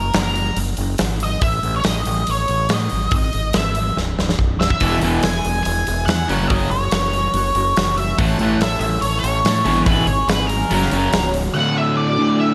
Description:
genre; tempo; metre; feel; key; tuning
classic rock; 142 BPM; 4/4; straight; unclear; A4 = 440 Hz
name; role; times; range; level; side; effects
octave-fuzz lead guitar; melody; 0.0-12.5 s; A#4 to G#5; -24 LUFS; equal; wah, distortion
growling fingered electric bass; bass; 0.0-11.5 s; B0 to A2; -24 LUFS; equal; overdrive
big rock drum kit; drums; 0.1-11.4 s; hi-hat, kick drum, snare drum; -24 LUFS; equal; none
fingerpicked twelve-string acoustic guitar; accompaniment; 4.8-11.6 s; E2 to A#4; -30 LUFS; equal; none
cranked stack guitar; riff; 4.8-11.1 s; E2 to A3; -26 LUFS; equal; overdrive
crunchy overdriven guitar; riff; 4.8-12.5 s; D2 to A3; -22 LUFS; equal; none
string machine, cellos; sustained chords; 11.5-12.5 s; E4 to D5; -30 LUFS; equal; ensemble chorus
room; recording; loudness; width
light reverb, studio reverb; none; -18 LUFS; mono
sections
0.0-11.5 A section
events
drum fill 4.0-4.8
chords
0.0 F#; 1.4 A; 2.9 E/G#; 4.0 Bsus4; 4.8 E; 6.3 F#; 8.2 A; 9.7 E/G#; 10.7 F#; 11.5 Dadd9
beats
0.15 0.58 1.00 | 1.43 1.85 2.27 2.70 | 3.12 3.54 3.97 4.39 | 4.81 5.24 5.66 6.08 | 6.50 6.92 7.34 7.76 | 8.19 8.61 9.03 9.45 | 9.87 10.29 10.71 11.12 | 11.54 11.96 12.38

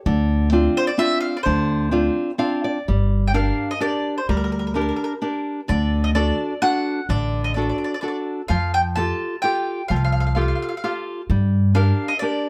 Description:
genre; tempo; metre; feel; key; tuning
italian folk, Italian serenade; 129 BPM; 3/4; straight; G minor; A4 = 440 Hz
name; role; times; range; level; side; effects
nylon-string guitar; accompaniment; 0.1-12.5 s; D3 to F5; -26 LUFS; equal; none
upright bass; bass; 0.1-11.9 s; G1 to G2; -22 LUFS; equal; none
mandolin; melody; 0.8-12.5 s; Bb4 to A5; -27 LUFS; equal; none
room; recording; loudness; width
light reverb; none; -21 LUFS; mono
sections
0.0-2.9 A section; 2.9-12.5 B section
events
nylon-string guitar fill 2.2-2.9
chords
0.1 Dm7; 2.9 Gm; 5.7 D; 8.5 Fadd9; 11.3 Gm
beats
| 0.06 0.53 0.99 | 1.46 1.93 2.40 | 2.88 3.35 3.83 | 4.29 4.76 5.23 | 5.70 6.16 6.62 | 7.09 7.56 8.03 | 8.50 8.97 9.44 | 9.91 10.38 10.84 | 11.30 11.76 12.23

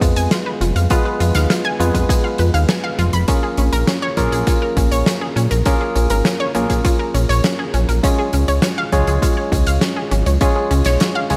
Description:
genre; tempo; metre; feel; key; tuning
synthwave; 101 BPM; 4/4; straight; unclear; A4 = 440 Hz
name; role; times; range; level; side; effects
analog pluck; arpeggios; 0.0-11.4 s; Db4 to Cb6; -25 LUFS; equal; chorus, delay
barky tine electric piano; stabs; 0.0-11.4 s; Ab3 to Db5; -24 LUFS; equal; vintage 12-bit sampler grit, delay
chorused synth bass; bass; 0.0-11.4 s; F1 to Bb2; -19 LUFS; equal; sidechain pumping
electronic kick drum; drums; 0.0-10.5 s; none; -20 LUFS; equal; none
huge arena drum kit; drums; 0.0-11.4 s; hi-hat, snare drum; -25 LUFS; equal; none
room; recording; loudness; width
light reverb, studio reverb; none; -17 LUFS; mono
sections
0.0-11.4 A section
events
none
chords
0.0 Fdim; 3.3 Bbm7; 8.0 Db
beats
0.31 | 0.91 1.50 2.09 2.69 | 3.28 3.88 4.47 5.06 | 5.66 6.25 6.85 7.44 | 8.04 8.63 9.22 9.82 | 10.41 11.01

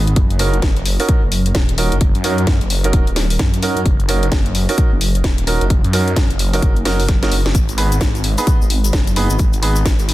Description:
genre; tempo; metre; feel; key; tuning
bass house; 130 BPM; 4/4; swing 61% on 16ths; unclear; A4 = 440 Hz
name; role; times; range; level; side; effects
phased detuned saw bass; bass; 0.0-10.1 s; D#1 to F#2; -17 LUFS; equal; phaser, overdrive, sidechain pumping
house drum kit; drums; 0.1-10.1 s; hi-hat, snare drum; -22 LUFS; left 2 dB; none
electronic kick drum; drums; 0.2-10.0 s; none; -16 LUFS; equal; none
bright grand piano; stabs; 0.4-9.8 s; B3 to B4; -22 LUFS; right 3 dB; sidechain pumping, low-pass filter, tape echo
tube shaker; percussion; 7.5-10.1 s; none; -28 LUFS; left 4 dB; none
room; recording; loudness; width
little or no reverb; dense, heavily limited modern master; -13 LUFS; side -16 dB against mid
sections
0.0-10.1 A section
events
drum fill 7.1-7.5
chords
0.2 F#6; 7.5 G#m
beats
| 0.16 0.62 1.09 1.55 | 2.01 2.47 2.93 3.39 | 3.86 4.32 4.78 5.24 | 5.70 6.16 6.62 7.09 | 7.55 8.01 8.47 8.93 | 9.39 9.86

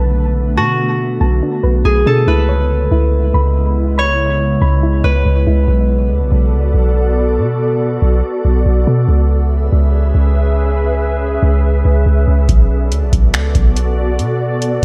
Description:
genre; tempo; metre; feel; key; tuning
hip hop, atmospheric cloud-rap; 141 BPM; 4/4; half-time; B dorian; A4 = 440 Hz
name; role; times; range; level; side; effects
concert harp; melody; 0.0-7.1 s; F#4 to C#5; -21 LUFS; equal; diffuse ambient delay
glassy FM pad; sustained chords; 0.0-14.8 s; C#3 to E5; -22 LUFS; equal; ensemble chorus, built-in reverb, sidechain pumping
soft round pluck; arpeggios; 0.0-5.7 s; D4 to B5; -27 LUFS; equal; chorus, diffuse ambient delay
warm 808-style bass; bass; 0.0-14.8 s; B1 to B2; -16 LUFS; equal; none
booming analog drum machine; drums; 12.5-14.7 s; finger snaps, hi-hat, kick drum; -16 LUFS; equal; none
room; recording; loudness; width
light reverb; none; -14 LUFS; mono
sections
0.0-5.7 A section; 5.7-14.8 B section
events
none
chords
0.0 Bm7; 2.3 C#m7; 5.7 Bm7; 9.1 C#m7; 12.5 Bm7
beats
0.15 | 0.57 1.00 1.43 1.85 | 2.28 2.70 3.13 3.55 | 3.98 4.41 4.83 5.26 | 5.68 6.11 6.53 6.96 | 7.38 7.81 8.23 8.66 | 9.09 9.51 9.94 10.36 | 10.79 11.21 11.64 12.06 | 12.49 12.91 13.34 13.77 | 14.19 14.62

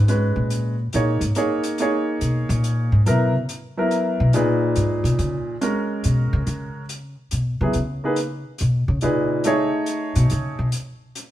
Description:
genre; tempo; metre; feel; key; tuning
modal jazz; 141 BPM; 3/4; swing 68% on 8ths; unclear; A4 = 440 Hz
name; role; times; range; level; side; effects
upright bass; bass; 0.0-10.7 s; Ab2 to Db3; -20 LUFS; equal; none
warm concert grand piano; accompaniment; 0.1-10.7 s; Bb2 to Db5; -22 LUFS; right 1 dB; none
hi-hat; drums; 0.1-11.3 s; none; -34 LUFS; left 2 dB; none
room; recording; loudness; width
moderate stone room reverb, RT60 1.2 s; band playing live in one room; -19 LUFS; side -13 dB against mid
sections
0.0-4.3 A section; 4.3-11.3 A section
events
upright bass solo 0.0-11.3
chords
0.0 Db13sus4; 9.4 B7sus2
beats
0.09 | 0.51 0.93 1.36 | 1.78 2.21 2.63 | 3.06 3.48 3.91 | 4.34 4.76 5.19 | 5.61 6.04 6.47 | 6.89 7.32 7.75 | 8.17 8.60 9.02 | 9.45 9.88 10.30 | 10.73 11.16

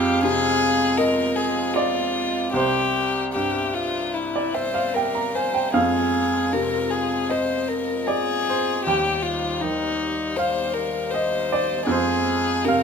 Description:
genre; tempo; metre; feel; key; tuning
neoclassical piano and strings; 74-81 BPM; 4/4; rubato; F dorian; A4 = 441 Hz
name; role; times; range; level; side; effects
warm violin; melody; 0.0-12.8 s; Eb4 to C5; -23 LUFS; left 5 dB; none
bright upright piano; accompaniment; 0.0-12.8 s; C2 to Bb5; -23 LUFS; right 2 dB; none
pedal harmonium; sustained chords; 0.0-12.8 s; G3 to E5; -33 LUFS; right 3 dB; none
room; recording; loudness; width
moderate large studio reverb, RT60 1.3 s; minimal, uncompressed stereo recording; -20 LUFS; side -6 dB against mid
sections
0.0-12.8 A section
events
none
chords
0.0 Fm; 2.5 C; 5.7 Fm; 8.9 Cm/Eb; 11.9 Fm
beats
0.24 0.98 1.75 | 2.54 3.35 4.15 4.95 | 5.74 6.52 7.29 8.07 | 8.86 9.62 10.37 11.12 | 11.87 12.64

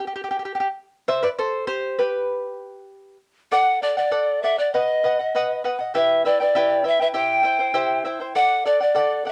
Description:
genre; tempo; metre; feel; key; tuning
andean folk, Andean ensemble; 99 BPM; 2/4; straight; unclear; A4 = 440 Hz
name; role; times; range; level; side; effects
charango; accompaniment; 0.0-9.3 s; E4 to G5; -26 LUFS; equal; none
breathy bright pan flute; melody; 3.5-9.3 s; D5 to G5; -22 LUFS; equal; cassette tape
room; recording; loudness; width
moderate studio reverb, RT60 0.6 s; home recording on cassette; -21 LUFS; mono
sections
0.0-3.5 A section; 3.5-9.3 B section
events
charango solo 0.0-3.5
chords
0.0 N.C.; 1.1 C5; 2.3 N.C.; 3.5 D; 4.7 B; 5.9 Em; 7.1 C; 8.4 D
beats
0.46 | 1.07 1.68 | 2.29 2.90 | 3.50 4.11 | 4.72 5.33 | 5.93 6.54 | 7.14 7.75 | 8.35 8.96

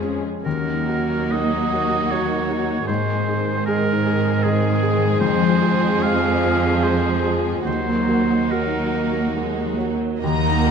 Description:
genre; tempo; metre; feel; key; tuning
cinematic, emotional film score for orchestra; 68-78 BPM; 3/4; rubato; Eb dorian; A4 = 440 Hz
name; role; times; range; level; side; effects
rich studio violin section; second line; 0.0-10.7 s; C4 to Eb5; -27 LUFS; left 1 dB; none
felt-muted upright piano; accompaniment; 0.0-10.7 s; Eb2 to Bb4; -25 LUFS; left 1 dB; none
rich studio viola section; accompaniment; 0.0-10.7 s; Eb3 to Eb4; -26 LUFS; right 1 dB; none
concert harp; arpeggios; 0.0-10.7 s; Ab2 to F5; -27 LUFS; left 9 dB; none
clear studio cello section; bass; 0.0-10.0 s; Eb2 to Ab2; -23 LUFS; right 4 dB; none
clear oboe; second line; 0.4-9.4 s; Ab4 to F5; -25 LUFS; right 2 dB; none
rich studio violin section; melody; 10.2-10.7 s; Bb5; -24 LUFS; left 3 dB; none
clear studio double bass section; bass; 10.2-10.7 s; Eb2; -22 LUFS; right 6 dB; none
room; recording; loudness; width
moderate scoring stage reverb, RT60 1.7 s; dark, warm production; -18 LUFS; side -6 dB against mid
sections
0.0-10.2 A section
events
none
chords
0.5 Ebm; 2.9 Ab; 5.2 Fm; 7.7 Ebm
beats
| 0.45 1.31 2.11 | 2.88 3.66 4.45 | 5.21 6.03 6.83 | 7.67 8.52 9.36 | 10.22

